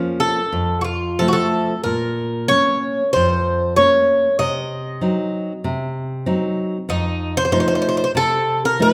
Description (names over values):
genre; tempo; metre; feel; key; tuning
fado; 94 BPM; 4/4; rubato; Bb minor; A4 = 441 Hz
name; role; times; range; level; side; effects
Irish bouzouki; melody; 0.0-8.9 s; Eb4 to Eb5; -20 LUFS; equal; none
nylon-string guitar; accompaniment; 0.0-8.9 s; F2 to Eb4; -24 LUFS; equal; none
room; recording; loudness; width
wet recital hall reverb, RT60 1.3 s; none; -19 LUFS; mono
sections
0.0-8.9 A section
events
none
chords
0.0 Bbm/F; 0.5 F; 1.8 Bbmadd9; 4.4 Cdim; 6.9 F7